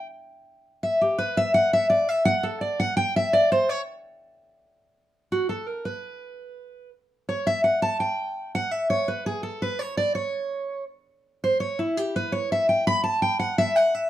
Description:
bluegrass; 167 BPM; 4/4; straight; E dorian; A4 = 440 Hz
picked steel-string acoustic guitar; solo; 0.0-14.1 s; E4 to B5; -22 LUFS; equal
moderate studio reverb, RT60 0.5 s; dark, warm production; -22 LUFS; side -13 dB against mid
0.0-4.4 A section; 4.4-14.1 A section
steel-string acoustic guitar solo 0.0-4.4, 4.4-14.1
| 0.10 0.46 0.82 1.18 | 1.54 1.90 2.26 2.62 | 2.98 3.33 3.69 4.05 | 4.41 4.77 5.13 5.49 | 5.85 6.21 6.57 6.93 | 7.29 7.65 8.01 8.37 | 8.72 9.08 9.44 9.80 | 10.16 10.52 10.88 11.24 | 11.60 11.96 12.32 12.68 | 13.04 13.40 13.76

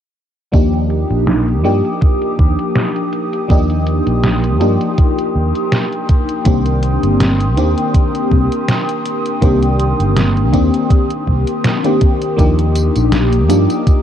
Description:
vaporwave; 81 BPM; 4/4; swing 55% on 16ths; A4 = 440 Hz
FM electric piano with soft pad layer; accompaniment; 0.5-14.0 s; Eb3 to G4; -16 LUFS; left 1 dB; phaser, analog chorus, tape echo
warbly tape-like pad; sustained chords; 1.0-14.0 s; Bb4 to Eb6; -24 LUFS; equal; chorus, built-in reverb
sustaining fretless electric bass; bass; 0.5-13.7 s; G1 to G2; -15 LUFS; equal
detuned 8-bit digital drum machine; drums; 0.5-14.0 s; hi-hat, snare drum, tambourine; -19 LUFS; equal; overdrive, low-pass filter on hats, low-pass filter on snare, low-pass filter on perc, low-pass filter on room
electronic kick drum; drums; 0.5-14.0 s; -12 LUFS; equal
little or no reverb; dark, warm production, cassette tape; -12 LUFS; side -10 dB against mid
0.5-12.4 A section; 12.4-14.0 B section
filter sweep on drum 0.5-12.4
0.5 Ebmaj7; 6.5 Cm7; 12.4 Ebmaj7
| 0.54 1.28 2.02 2.76 | 3.50 4.24 4.98 5.72 | 6.46 7.20 7.94 8.68 | 9.43 10.16 10.91 11.65 | 12.39 13.13 13.87

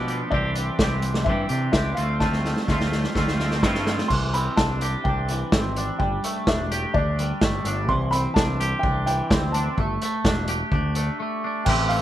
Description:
indie rock; 127 BPM; 4/4; straight; A4 = 440 Hz
twangy electric guitar; riff; 0.0-12.0 s; E3 to G4; -26 LUFS; equal; double-tracked left and right, slapback echo
growling fingered electric bass; bass; 0.0-12.0 s; E1 to C3; -26 LUFS; equal; overdrive
vintage drum kit; drums; 0.1-12.0 s; crash cymbal, hi-hat, kick drum, snare drum; -24 LUFS; equal
dark upright piano; melody; 0.3-12.0 s; D5 to C6; -28 LUFS; equal; slapback echo
little or no reverb; -20 LUFS; side -12 dB against mid
0.0-4.1 A section; 4.1-11.7 B section
drum fill 2.2-4.1; break 11.2-11.7
0.3 Cadd9; 2.0 Dm7; 4.1 Cadd9; 6.0 Gsus2; 7.9 Cadd9; 9.8 Gsus2
| 0.32 0.80 1.27 1.74 | 2.21 2.69 3.16 3.63 | 4.10 4.58 5.05 5.52 | 6.00 6.47 6.94 7.42 | 7.89 8.36 8.84 9.31 | 9.78 10.25 10.72 11.20 | 11.67

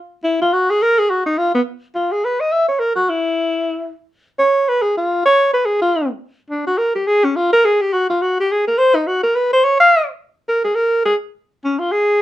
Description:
jazz; 211 BPM; 4/4; swing 61% on 8ths; A4 = 439 Hz
breathy alto saxophone; solo; 0.2-12.2 s; Cb4 to F5; -14 LUFS; equal
light reverb; -14 LUFS; side -14 dB against mid
0.0-11.6 A section
| 0.22 0.50 0.79 1.07 | 1.36 1.64 1.93 2.21 | 2.50 2.78 3.06 3.35 | 3.63 3.92 4.20 4.49 | 4.77 5.06 5.34 5.63 | 5.91 6.20 6.48 6.76 | 7.05 7.33 7.62 7.90 | 8.19 8.47 8.76 9.04 | 9.32 9.61 9.89 10.18 | 10.46 10.74 11.03 11.31 | 11.60 11.88 12.17

